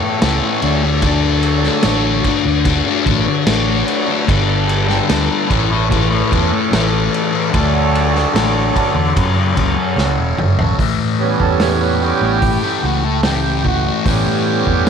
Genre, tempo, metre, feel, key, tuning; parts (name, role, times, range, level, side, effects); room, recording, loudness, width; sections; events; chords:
psychedelic rock; 74 BPM; 4/4; straight; A mixolydian; A4 = 440 Hz
hand-pumped harmonium; sustained chords; 0.0-14.9 s; E3 to C#5; -20 LUFS; right 12 dB
fuzz guitar; riff; 0.0-14.9 s; F#2 to D4; -17 LUFS; left 11 dB; distortion, phaser
fingered electric bass; bass; 0.2-14.9 s; E1 to A2; -19 LUFS; right 1 dB
vintage drum kit; drums; 0.2-14.9 s; crash cymbal, hi-hat, kick drum, snare drum, toms; -19 LUFS; right 1 dB
light reverb, small room ambience; 1960s-style stereo with parts hard left and right; -13 LUFS; side -7 dB against mid
0.0-10.8 A section; 10.8-14.9 B section
drum fill 10.0-10.8; harmonium solo 10.8-14.9
0.0 Aadd9; 0.6 Dmaj7; 4.3 Gadd9; 5.5 Aadd9; 7.5 Dmaj7; 9.2 F#m; 10.8 A7